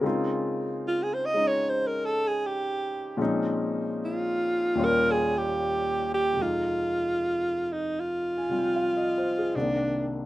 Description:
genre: jazz ballad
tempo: 76 BPM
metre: 4/4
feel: swing 66% on 8ths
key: F minor from 6.4 s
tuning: A4 = 440 Hz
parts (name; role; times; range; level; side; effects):
- warm concert grand piano; accompaniment; 0.0-10.3 s; C2 to Ab5; -29 LUFS; left 2 dB; none
- breathy alto saxophone; melody; 0.9-10.2 s; D4 to Eb5; -26 LUFS; right 1 dB; none
room: moderate studio reverb, RT60 0.6 s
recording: rough home demo mix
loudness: -24 LUFS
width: side -16 dB against mid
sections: 0.0-6.4 A section; 6.4-10.3 B section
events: alto saxophone solo 0.0-6.4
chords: 0.0 Dbmaj9; 3.2 Bbm11; 4.8 Eb7; 6.4 Fm7; 9.6 Cm9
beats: | 0.04 0.82 1.61 2.40 | 3.19 3.99 4.78 5.58 | 6.38 7.18 7.97 8.76 | 9.55

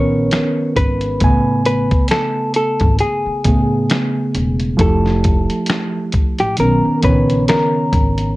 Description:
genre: lo-fi hip hop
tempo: 67 BPM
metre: 4/4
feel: swing 57% on 16ths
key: unclear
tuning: A4 = 440 Hz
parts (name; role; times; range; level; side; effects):
- hollow-body jazz guitar; melody; 0.0-8.4 s; G4 to C#5; -20 LUFS; left 1 dB; none
- mellow reed electric piano; accompaniment; 0.0-8.4 s; C#3 to G#5; -18 LUFS; right 1 dB; none
- upright bass; bass; 0.0-8.3 s; E1 to B1; -20 LUFS; equal; none
- dusty soul sampler-style drum kit; drums; 0.3-8.4 s; finger snaps, hi-hat, kick drum, snare drum; -17 LUFS; equal; none
room: light reverb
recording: cassette tape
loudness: -13 LUFS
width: side -19 dB against mid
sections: 0.0-8.4 A section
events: none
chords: 0.0 Bmaj9; 1.2 Amaj9; 4.8 Fmaj9; 6.6 Bmaj9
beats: 0.32 | 1.21 2.11 3.00 3.90 | 4.79 5.69 6.59 7.48

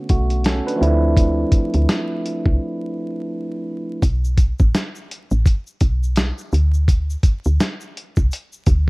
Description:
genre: hip hop, boom-bap hip-hop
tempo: 84 BPM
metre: 4/4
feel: swing 60% on 16ths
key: unclear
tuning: A4 = 441 Hz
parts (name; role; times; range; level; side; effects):
- tine electric piano; accompaniment; 0.0-4.0 s; D3 to B4; -22 LUFS; right 1 dB; cassette tape, high-pass filter, low-pass filter
- woody FM bass; bass; 0.1-8.9 s; A1 to D2; -18 LUFS; equal; none
- dusty soul sampler-style drum kit; drums; 0.1-8.9 s; hi-hat, kick drum, snare drum; -17 LUFS; equal; none
- egg shaker; percussion; 4.0-8.9 s; none; -43 LUFS; left 3 dB; none
room: light reverb, digital ambience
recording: dark, warm production, vinyl crackle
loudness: -17 LUFS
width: side -26 dB against mid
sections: 0.0-4.0 A section; 4.0-8.9 B section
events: filter sweep on tine electric piano 0.0-4.0; break 2.6-4.0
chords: 0.0 Bm9; 0.8 Dm9; 4.0 N.C.; 6.5 D5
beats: 0.45 | 1.17 1.88 2.60 3.31 | 4.02 4.74 5.45 6.17 | 6.88 7.59 8.31

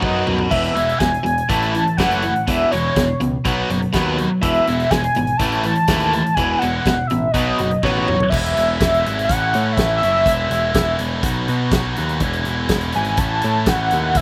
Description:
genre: indie rock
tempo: 123 BPM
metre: 4/4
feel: straight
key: E major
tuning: A4 = 441 Hz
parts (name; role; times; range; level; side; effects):
- octave-doubled lead; melody; 0.0-14.2 s; C#5 to A5; -22 LUFS; equal; chorus
- high-gain distorted guitar; riff; 0.0-14.2 s; E2 to F#4; -27 LUFS; equal; distortion, slapback echo
- overdriven electric guitar; riff; 0.0-8.3 s; E2 to F#4; -23 LUFS; equal; none
- growling picked electric bass; bass; 0.0-14.2 s; E1 to B2; -26 LUFS; equal; overdrive
- big rock drum kit; drums; 0.0-14.2 s; crash cymbal, hi-hat, kick drum, snare drum, toms; -25 LUFS; equal; none
room: little or no reverb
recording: recorded outdoors, with no room sound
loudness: -18 LUFS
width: mono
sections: 0.5-8.3 A section; 8.3-14.2 B section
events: drum fill 0.0-0.5, 7.8-8.3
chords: 0.0 B; 0.5 E; 1.5 A; 2.5 E; 3.5 B; 4.4 E; 5.4 A; 6.4 E; 7.3 Badd9; 8.3 E; 9.3 A; 10.3 E; 11.2 B; 12.2 E; 13.2 A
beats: 0.04 | 0.52 1.01 1.50 1.99 | 2.48 2.97 3.46 3.94 | 4.43 4.92 5.40 5.89 | 6.38 6.86 7.35 7.84 | 8.32 8.81 9.29 9.78 | 10.27 10.75 11.24 11.73 | 12.21 12.70 13.19 13.67 | 14.16

